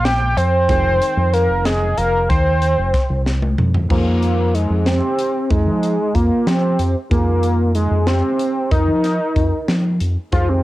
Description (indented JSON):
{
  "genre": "progressive instrumental, band music in an uneven meter",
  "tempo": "187 BPM (eighths)",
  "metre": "5/8",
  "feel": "straight",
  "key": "F minor",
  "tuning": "A4 = 444 Hz",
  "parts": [
    { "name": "lead with added fifth", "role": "melody", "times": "0.0-10.6 s", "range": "Ab3 to G5", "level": "-18 LUFS", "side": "equal", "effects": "chorus, cassette tape" },
    { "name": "warm baby grand piano", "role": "accompaniment", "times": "0.0-10.6 s", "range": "Eb3 to C4", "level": "-31 LUFS", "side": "equal", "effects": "none" },
    { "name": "fingered electric bass", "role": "bass", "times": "0.0-10.6 s", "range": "F1 to F3", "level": "-18 LUFS", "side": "equal", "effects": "none" },
    { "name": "crisp fusion drum kit", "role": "drums", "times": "0.1-10.5 s", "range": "crash cymbal, hi-hat, kick drum, snare drum, toms", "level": "-22 LUFS", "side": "equal", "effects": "cassette tape" }
  ],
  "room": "light reverb",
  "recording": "home recording on cassette",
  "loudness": "-15 LUFS",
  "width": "side -16 dB against mid",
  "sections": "0.0-3.9 A section; 3.9-10.6 B section",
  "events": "drum fill 3.3-3.9",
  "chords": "0.0 Fm7; 0.7 Ab/F; 3.9 Fm7",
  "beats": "0.04 0.36 | 0.69 1.01 1.33 1.65 1.97 | 2.29 2.61 2.93 3.25 3.58 | 3.90 4.22 4.54 4.86 5.18 | 5.50 5.83 6.15 6.47 6.79 | 7.11 7.43 7.75 8.07 8.40 | 8.72 9.04 9.36 9.68 10.00 | 10.32"
}